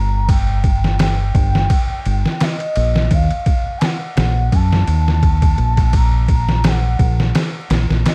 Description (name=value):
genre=trip hop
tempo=85 BPM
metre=4/4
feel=swing 56% on 16ths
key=unclear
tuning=A4 = 440 Hz
part: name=pure breathy sine lead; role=melody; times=0.0-8.1 s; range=Eb5 to Bb5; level=-27 LUFS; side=equal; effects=subtle chorus, vintage 12-bit sampler grit, dub echo
part: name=deep dub fingered electric bass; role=bass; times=0.0-8.0 s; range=G1 to Gb2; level=-18 LUFS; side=equal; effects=none
part: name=trip hop sampler-style drum kit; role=drums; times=0.3-8.1 s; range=kick drum, ride cymbal, snare drum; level=-19 LUFS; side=equal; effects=overdrive
room=little or no reverb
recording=dark, warm production, vinyl crackle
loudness=-16 LUFS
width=mono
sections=0.0-8.1 A section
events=none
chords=0.0 Cm (rootless); 3.1 Ebmadd9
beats=| 0.29 0.99 1.70 2.40 | 3.11 3.82 4.52 5.23 | 5.93 6.64 7.35 8.05